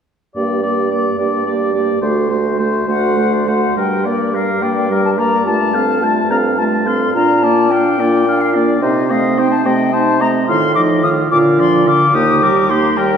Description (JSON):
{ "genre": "quick classical-period movement for wind quintet", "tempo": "72 BPM (dotted quarters)", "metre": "6/8", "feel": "rubato", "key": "G minor", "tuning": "A4 = 437 Hz", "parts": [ { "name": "warm oboe", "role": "second line", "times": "0.3-13.2 s", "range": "G4 to A5", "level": "-20 LUFS", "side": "left 2 dB", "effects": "none" }, { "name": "mellow French horn", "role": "accompaniment", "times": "0.4-13.2 s", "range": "D3 to D4", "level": "-20 LUFS", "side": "equal", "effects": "none" }, { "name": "warm clarinet", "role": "accompaniment", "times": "0.4-13.2 s", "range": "C4 to Bb4", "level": "-20 LUFS", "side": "right 5 dB", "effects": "none" }, { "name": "mellow bassoon", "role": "bass", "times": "0.4-13.2 s", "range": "D2 to C3", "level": "-18 LUFS", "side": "right 1 dB", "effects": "none" }, { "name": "silver concert flute", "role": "melody", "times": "2.9-13.2 s", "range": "D5 to Eb6", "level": "-18 LUFS", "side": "left 4 dB", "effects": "none" } ], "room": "wet scoring stage reverb, RT60 1.9 s", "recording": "heard from further back in the room", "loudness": "-12 LUFS", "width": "side -7 dB against mid", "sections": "0.4-3.8 A section; 3.8-13.2 B section", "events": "none", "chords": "0.4 Gm; 2.0 D7; 3.8 Gm; 5.5 F/G; 7.1 Bb; 8.8 Adim/C; 10.5 F7/A; 11.3 Bb; 12.1 Eb", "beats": "| 0.36 1.19 | 2.02 2.88 | 3.77 4.62 | 5.46 6.30 | 7.14 7.99 | 8.82 9.65 | 10.48 11.31 | 12.14 12.97" }